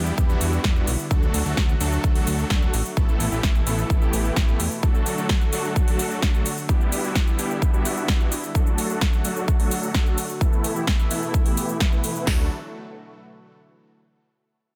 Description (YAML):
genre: EDM, festival progressive house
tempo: 129 BPM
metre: 4/4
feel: straight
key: D major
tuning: A4 = 442 Hz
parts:
  - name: lush unison pad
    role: sustained chords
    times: 0.0-12.5 s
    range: B2 to F#4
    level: -34 LUFS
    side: equal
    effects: chorus, sidechain pumping
  - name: supersaw chords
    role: riff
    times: 0.0-12.4 s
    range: E3 to B4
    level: -31 LUFS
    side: equal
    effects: cassette tape, sidechain pumping, low-pass filter, digital delay
  - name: fat analog bass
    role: bass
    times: 0.0-4.7, 12.3-12.5 s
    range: A1 to E2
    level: -28 LUFS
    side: equal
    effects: sidechain pumping
  - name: big-room dance drum kit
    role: drums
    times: 0.1-12.2 s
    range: hi-hat, shaker, snare drum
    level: -30 LUFS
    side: equal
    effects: none
  - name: big-room dance drum kit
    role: drums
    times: 0.2-12.4 s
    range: hi-hat, kick drum, snare drum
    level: -23 LUFS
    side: equal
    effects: none
room: digital ambience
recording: dense, heavily limited modern master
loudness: -22 LUFS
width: mono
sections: 0.0-12.3 A section; 12.3-14.1 B section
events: filter sweep on supersaw synth 0.0-12.3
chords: 0.0 Em7; 1.1 D; 3.0 Asus2; 4.8 D; 6.7 Em7; 8.6 D; 10.4 Asus2; 12.3 D